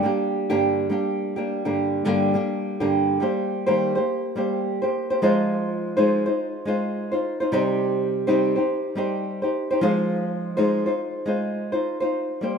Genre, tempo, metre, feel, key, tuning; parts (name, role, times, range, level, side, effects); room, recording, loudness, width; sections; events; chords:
pop; 104 BPM; 4/4; swing 60% on 16ths; A4 = 440 Hz
flamenco guitar; solo; 0.0-12.6 s; G2 to C5; -21 LUFS; equal
moderate plate reverb, RT60 2.7 s; minimal, uncompressed stereo recording; -21 LUFS; side -6 dB against mid
0.0-3.2 A section; 3.2-12.6 B section
0.0 Gm; 3.2 Eb6; 5.2 Fm7; 7.5 Cm; 9.8 Fm7